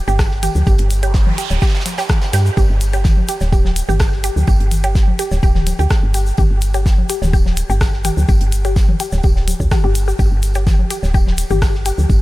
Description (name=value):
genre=minimal techno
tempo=126 BPM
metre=4/4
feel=straight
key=unclear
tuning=A4 = 440 Hz
part: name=resonant blip pluck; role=riff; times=0.1-11.9 s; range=G4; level=-24 LUFS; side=equal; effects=phaser, sidechain pumping, analog delay
part: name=woody FM bass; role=bass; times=0.1-12.2 s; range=D1 to G2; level=-17 LUFS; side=equal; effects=sidechain pumping
part: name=tube shaker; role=percussion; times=0.1-12.2 s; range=none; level=-32 LUFS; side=left 1 dB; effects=none
part: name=electronic kick drum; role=drums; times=0.2-12.2 s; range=none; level=-14 LUFS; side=equal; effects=none
part: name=minimal click drum kit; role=drums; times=0.2-12.0 s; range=hi-hat, rim click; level=-27 LUFS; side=left 1 dB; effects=none
part: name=modern studio drum kit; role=drums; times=0.2-12.2 s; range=hi-hat, snare drum, tambourine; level=-33 LUFS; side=right 1 dB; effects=high-pass filter on hats, high-pass filter on snare, high-pass filter on perc, high-pass filter on room
part: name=electronic toms, congas and bongos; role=percussion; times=0.4-12.1 s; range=none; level=-27 LUFS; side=left 4 dB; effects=overdrive, diffuse ambient delay
part: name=noise sweep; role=sound effects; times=0.9-2.6 s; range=none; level=-30 LUFS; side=right 5 dB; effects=none
room=small room ambience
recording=none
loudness=-13 LUFS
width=side -18 dB against mid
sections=0.0-12.2 A section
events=noise sweep 0.9-2.6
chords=0.0 G5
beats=0.19 | 0.67 1.14 1.62 2.10 | 2.57 3.05 3.52 4.00 | 4.48 4.95 5.43 5.91 | 6.38 6.86 7.33 7.81 | 8.29 8.76 9.24 9.71 | 10.19 10.67 11.14 11.62 | 12.10